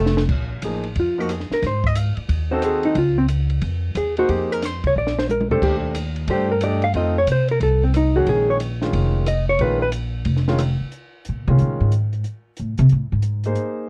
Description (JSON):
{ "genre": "jazz, small-group swing and bop", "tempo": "181 BPM", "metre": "4/4", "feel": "swing 64% on 8ths", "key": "Bb minor", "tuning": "A4 = 440 Hz", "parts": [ { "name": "hollow-body jazz guitar", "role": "melody", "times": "0.0-9.9 s", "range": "A3 to F5", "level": "-23 LUFS", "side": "equal", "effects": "none" }, { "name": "upright bass", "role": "bass", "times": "0.0-13.5 s", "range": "F1 to C3", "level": "-23 LUFS", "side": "equal", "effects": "none" }, { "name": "compact cocktail drum kit", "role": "drums", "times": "0.1-13.7 s", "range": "crash cymbal, hi-hat, kick drum, ride cymbal, rim click, snare drum, toms", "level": "-31 LUFS", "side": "equal", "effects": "none" }, { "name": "clear concert grand piano", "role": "accompaniment", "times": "0.6-13.9 s", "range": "Eb3 to Eb5", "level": "-27 LUFS", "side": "equal", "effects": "none" } ], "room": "light reverb", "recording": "worn, warbling old tape, cassette tape, warbly pitch drift", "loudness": "-20 LUFS", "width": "mono", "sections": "0.3-10.9 A section; 10.9-13.9 B section", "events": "drum fill 0.0-0.3, 5.0-5.6; upright bass solo 10.9-13.9", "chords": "0.3 Bb5; 1.6 Ab7b9; 3.0 Db; 4.3 Fm7; 5.0 Bb; 5.6 Ebmaj7; 6.9 F7; 8.3 Bbm7; 10.3 Fm7; 10.9 Bbm7; 12.2 Ab" }